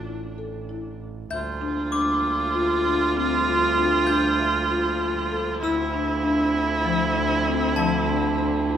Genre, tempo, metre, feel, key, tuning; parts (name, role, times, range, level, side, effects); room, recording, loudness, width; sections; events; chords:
contemporary instrumental, chamber music in an uneven meter; 195 BPM (eighths); 7/8; straight; A4 = 438 Hz
rich viola; second line; 0.0-8.8 s; D4 to F4; -24 LUFS; right 3 dB
rich double bass; bass; 0.0-8.8 s; A1 to D2; -29 LUFS; right 3 dB
marimba with soft mallets; arpeggios; 0.1-8.8 s; F3 to E5; -26 LUFS; left 3 dB
warm studio string section; sustained chords; 1.3-8.8 s; D3 to C4; -34 LUFS; equal
glockenspiel with brass mallets; texture; 1.3-8.8 s; A5 to G6; -31 LUFS; equal
wet scoring stage reverb, RT60 2.0 s; -20 LUFS; side -9 dB against mid
0.0-1.3 A section; 1.3-8.8 B section
0.0 Asus4; 1.3 Gm7/D; 5.6 Dm7